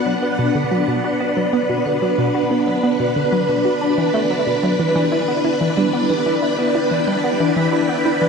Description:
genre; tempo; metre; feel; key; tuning
ambient, sequencer-driven space music; 92 BPM; 4/4; straight; B minor; A4 = 438 Hz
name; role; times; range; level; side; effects
string machine, full ensemble; sustained chords; 0.0-8.3 s; B3 to G5; -18 LUFS; equal; phaser, ensemble chorus
wind-like tuned noise texture; texture; 0.0-8.3 s; B4 to B5; -26 LUFS; right 3 dB; built-in reverb
vibraphone with hard mallets; arpeggios; 0.1-8.3 s; B3 to B5; -35 LUFS; right 2 dB; none
analog pluck; riff; 0.1-8.3 s; B2 to F#4; -21 LUFS; left 1 dB; chorus, ping-pong delay
room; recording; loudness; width
wet plate reverb, RT60 2.9 s; echo-heavy mix; -16 LUFS; side -5 dB against mid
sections
0.0-8.3 A section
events
filter sweep on synth arpeggio sound 0.0-8.3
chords
0.0 Bm; 4.8 Em7

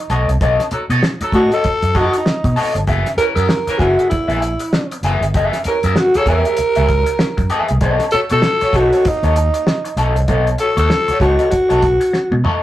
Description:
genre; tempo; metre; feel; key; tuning
funk; 97 BPM; 4/4; swing 60% on 16ths; unclear; A4 = 440 Hz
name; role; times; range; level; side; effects
breathy alto saxophone; melody; 0.0-12.4 s; D#4 to A#4; -16 LUFS; equal; slapback echo
electric guitar at the edge of break-up; accompaniment; 0.1-12.6 s; D#4 to E5; -20 LUFS; left 2 dB; wah
vintage muted fingered electric bass; bass; 0.1-12.4 s; F#1 to B2; -18 LUFS; equal; none
cloth-damped thuddy drum kit; drums; 0.1-12.6 s; hi-hat, kick drum, snare drum, toms; -20 LUFS; equal; none
warm horn section; second line; 0.7-11.5 s; E3 to C#5; -23 LUFS; equal; none
room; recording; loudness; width
wet small room ambience, RT60 0.5 s; rough rehearsal-room recording, tube saturation; -13 LUFS; side -14 dB against mid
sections
0.0-12.6 A section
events
drum fill 12.1-12.6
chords
0.0 B9; 2.9 F#9; 7.8 B9

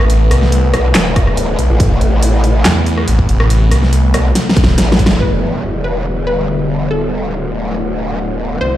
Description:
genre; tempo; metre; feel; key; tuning
heavy wobble dubstep; 141 BPM; 4/4; half-time; E minor; A4 = 438 Hz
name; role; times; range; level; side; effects
evolving wavetable pad; sustained chords; 0.0-8.8 s; C3 to B4; -20 LUFS; left 1 dB; phaser, built-in reverb, sidechain pumping
snarling distorted saw bass; bass; 0.0-4.8 s; A1 to E2; -11 LUFS; equal; distortion, overdrive
dubstep drum kit; drums; 0.0-5.2 s; handclaps, hi-hat, rim click, snare drum; -16 LUFS; equal; overdrive
growl bass; bass; 0.7-8.8 s; D1 to C2; -16 LUFS; equal; distortion, chorus, overdrive
electronic kick drum; drums; 1.2-5.1 s; none; -14 LUFS; equal; none
wide unison pluck; melody; 5.2-8.8 s; A4 to C5; -21 LUFS; left 2 dB; cassette tape, tape echo
impact; sound effects; 5.2-6.9 s; none; -22 LUFS; equal; none
room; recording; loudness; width
light reverb, digital ambience; played on a big sound system in a bare room, large studio reverb; -11 LUFS; side -13 dB against mid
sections
0.0-5.2 A section; 5.2-8.8 B section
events
drop 0.0-5.2; drum fill 4.4-5.2; band accent 5.1; impact 5.2-6.9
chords
0.0 Amadd9; 5.2 Em7; 6.9 Bm7/D

